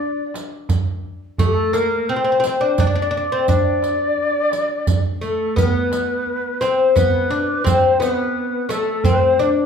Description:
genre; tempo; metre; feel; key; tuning
Persian modal ensemble; 86 BPM; 3/4; straight; unclear; A4 = 440 Hz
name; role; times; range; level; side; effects
oud; melody; 0.0-9.7 s; A3 to D4; -18 LUFS; left 2 dB; none
breathy bright ney; second line; 0.0-9.5 s; G4 to D5; -24 LUFS; left 1 dB; none
tombak; percussion; 0.3-9.2 s; none; -20 LUFS; right 2 dB; none
riq; percussion; 0.4-9.5 s; none; -29 LUFS; right 5 dB; none
room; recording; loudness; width
wet large studio reverb, RT60 0.9 s; band playing live in one room; -16 LUFS; side -7 dB against mid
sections
0.0-5.6 A section; 5.6-9.7 B section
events
none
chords
none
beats
0.69 | 1.39 2.08 2.78 | 3.48 4.18 4.87 | 5.57 6.27 6.96 | 7.66 8.35 9.05

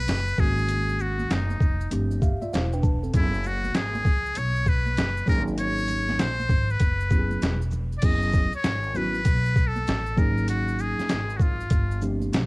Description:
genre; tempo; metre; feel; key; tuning
hip hop, jazz-hop; 98 BPM; 4/4; swing 64% on 16ths; unclear; A4 = 440 Hz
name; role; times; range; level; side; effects
trumpet with metal mute; melody; 0.0-12.0 s; D#4 to D#5; -28 LUFS; left 1 dB; none
upright bass; bass; 0.0-12.5 s; E1 to C#2; -27 LUFS; equal; none
boom bap sampler-style drum kit; drums; 0.1-12.5 s; crash cymbal, hi-hat, kick drum, shaker, snare drum; -24 LUFS; equal; vintage 12-bit sampler grit
maracas and congas; percussion; 0.1-12.5 s; none; -39 LUFS; right 3 dB; none
mellow tine electric piano; accompaniment; 0.4-12.5 s; D#3 to A5; -29 LUFS; right 1 dB; medium stereo tremolo, cassette tape
room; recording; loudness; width
small room ambience; home recording on cassette; -22 LUFS; side -25 dB against mid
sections
0.0-8.0 A section; 8.0-12.5 B section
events
tine electric piano fill 1.9-3.1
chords
0.4 G#9sus4; 1.9 G9sus4; 3.1 F#sus4; 5.3 G#9sus4; 6.8 F#9sus4; 10.2 G#9sus4; 11.7 G9sus4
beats
0.07 | 0.69 1.30 1.91 2.52 | 3.14 3.75 4.36 4.97 | 5.59 6.20 6.81 7.42 | 8.04 8.65 9.26 9.87 | 10.48 11.10 11.71 12.32

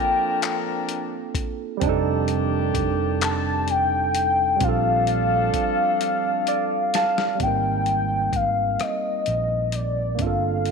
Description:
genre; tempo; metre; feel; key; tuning
slow six-eight R&B; 43 BPM (dotted quarters); 6/8; straight; unclear; A4 = 440 Hz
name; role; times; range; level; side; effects
warm velvety synth lead; melody; 0.0-10.7 s; D5 to A5; -22 LUFS; left 3 dB; chorus, slapback echo
barky tine electric piano; accompaniment; 0.0-10.7 s; G3 to A5; -26 LUFS; right 12 dB; overdrive, wide subtle chorus
warm horn section; stabs; 0.0-6.9 s; Eb3 to Bb4; -31 LUFS; left 12 dB; slapback echo
dusty soul sampler-style drum kit; drums; 0.4-10.7 s; handclaps, hi-hat, kick drum, rim click, snare drum; -29 LUFS; left 3 dB; none
mellow fretless electric bass; bass; 1.8-10.7 s; F1 to Bb1; -26 LUFS; equal; none
room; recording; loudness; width
moderate echo chamber reverb, RT60 2.2 s; 1960s-style stereo with parts hard left and right; -20 LUFS; side -5 dB against mid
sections
0.0-7.4 A section; 7.4-10.7 B section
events
drum fill 6.0-7.4; tine electric piano fill 6.0-7.4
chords
0.0 Gm11; 1.8 F13; 4.6 Bbmaj13; 7.4 Abmaj9; 10.2 Gm11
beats
0.42 | 1.82 3.21 | 4.61 6.00 | 7.40 8.79 | 10.19

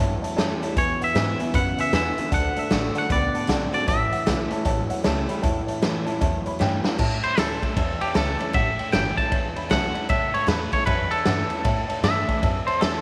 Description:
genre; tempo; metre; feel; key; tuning
rockabilly; 154 BPM; 4/4; swing 63% on 8ths; A mixolydian; A4 = 440 Hz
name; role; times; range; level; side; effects
dark upright piano; accompaniment; 0.0-13.0 s; B4 to B5; -33 LUFS; equal; none
picked steel-string acoustic guitar; accompaniment; 0.0-13.0 s; E2 to F#4; -34 LUFS; equal; none
electric guitar through a small old amp; riff; 0.0-7.0 s; E2 to C4; -33 LUFS; equal; none
upright bass; bass; 0.0-13.0 s; G1 to A2; -31 LUFS; equal; none
raw garage drum kit; drums; 0.2-12.9 s; crash cymbal, hi-hat, kick drum, ride cymbal, snare drum; -28 LUFS; equal; none
twangy electric guitar; melody; 0.8-13.0 s; G4 to A5; -28 LUFS; equal; spring reverb, tape echo
room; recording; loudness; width
light reverb, studio ambience; none; -23 LUFS; mono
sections
0.0-7.0 A section; 7.0-13.0 B section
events
drum fill 6.6-7.0; clean electric guitar solo 7.0-13.0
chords
0.0 A; 0.8 E; 2.3 D; 3.9 A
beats
0.37 | 0.76 1.15 1.54 1.93 | 2.32 2.71 3.10 3.49 | 3.88 4.26 4.65 5.04 | 5.43 5.82 6.21 6.60 | 6.99 7.38 7.76 8.15 | 8.54 8.93 9.32 9.71 | 10.10 10.49 10.88 11.27 | 11.65 12.04 12.43 12.82

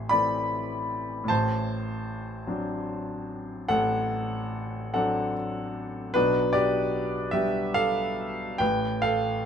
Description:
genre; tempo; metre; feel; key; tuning
classical, romantic nocturne for solo piano; 45-52 BPM (dotted quarters); 12/8; rubato; unclear; A4 = 440 Hz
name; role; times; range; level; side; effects
clear grand piano; solo; 0.0-9.5 s; A1 to C6; -25 LUFS; equal; none
room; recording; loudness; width
light reverb; minimal, uncompressed stereo recording; -25 LUFS; side -8 dB against mid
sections
0.0-9.5 A section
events
none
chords
0.0 Am; 1.3 D7/A; 6.1 G/B; 8.6 F/A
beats
0.12 | 1.29 2.48 3.70 4.95 | 6.14 7.34 8.60

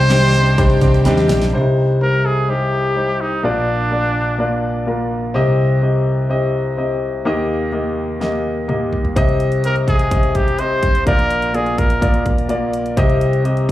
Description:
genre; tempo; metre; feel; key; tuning
piano-driven pop; 126 BPM; 4/4; straight; C minor; A4 = 444 Hz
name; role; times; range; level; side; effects
bright trumpet; melody; 0.0-4.9, 9.7-12.3 s; D4 to C5; -20 LUFS; equal; slapback echo, digital delay
clear studio violin section; second line; 0.0-1.5 s; G4 to G5; -31 LUFS; right 1 dB; slapback echo
clear grand piano; accompaniment; 0.0-13.7 s; Bb1 to Eb5; -17 LUFS; left 1 dB; slapback echo
picked steel-string acoustic guitar; riff; 0.0-1.5 s; C3 to G4; -22 LUFS; right 4 dB; slapback echo
picked electric bass; bass; 0.0-1.5 s; Bb1 to Eb2; -15 LUFS; equal; none
pop drum kit; drums; 0.1-1.5, 8.2-13.7 s; handclaps, hi-hat, kick drum, snare drum, toms; -18 LUFS; equal; none
room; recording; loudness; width
light reverb, studio ambience; live gig heard through the venue's PA, club reverb; -14 LUFS; side -14 dB against mid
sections
0.0-1.5 A section; 1.5-13.7 B section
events
drum fill 1.1-1.5, 8.2-9.2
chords
0.0 Cmadd9; 1.5 Cm; 3.4 Bb; 5.3 Cm; 7.3 Eb; 9.2 Cm; 11.1 Bb; 13.0 Cm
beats
0.10 0.58 1.06 | 1.53 2.01 2.49 2.96 | 3.44 3.92 4.39 4.87 | 5.35 5.83 6.30 6.78 | 7.26 7.73 8.21 8.69 | 9.16 9.64 10.12 10.59 | 11.07 11.55 12.02 12.50 | 12.98 13.45

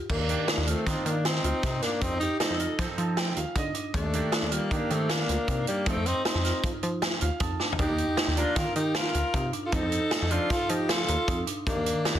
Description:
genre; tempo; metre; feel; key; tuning
progressive instrumental, band music in an uneven meter; 156 BPM; 5/4; straight; unclear; A4 = 440 Hz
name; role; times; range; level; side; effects
breathy tenor saxophone; melody; 0.1-12.2 s; G3 to F4; -30 LUFS; equal; plate reverb
clear alto saxophone; second line; 0.1-12.2 s; Bb3 to Bb4; -34 LUFS; left 4 dB; plate reverb
marimba with medium mallets; arpeggios; 0.1-12.2 s; Eb3 to F4; -36 LUFS; right 2 dB; plate reverb, ping-pong delay
plucky analog bass; bass; 0.1-12.2 s; D2 to F3; -30 LUFS; equal; none
vintage drum kit; drums; 0.1-12.1 s; crash cymbal, hi-hat, kick drum, snare drum, toms; -30 LUFS; equal; none
bright concert grand piano; accompaniment; 0.3-12.2 s; Eb3 to A5; -36 LUFS; right 5 dB; plate reverb
room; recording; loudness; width
moderate studio reverb, RT60 0.8 s; dense, heavily limited modern master; -25 LUFS; side -11 dB against mid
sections
0.1-12.2 A section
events
grand piano fill 2.8-3.9, 7.0-7.8; drum fill 7.6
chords
0.1 Ebmaj7(no3); 2.0 F7; 3.9 Ebmaj7; 5.9 F7; 7.8 Ebmaj7; 9.7 F7; 11.7 Ebmaj7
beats
| 0.10 0.48 0.86 1.25 1.63 | 2.02 2.40 2.79 3.17 3.56 | 3.94 4.33 4.71 5.10 5.48 | 5.87 6.25 6.64 7.02 7.41 | 7.79 8.18 8.57 8.95 9.34 | 9.72 10.11 10.50 10.89 11.28 | 11.66 12.05

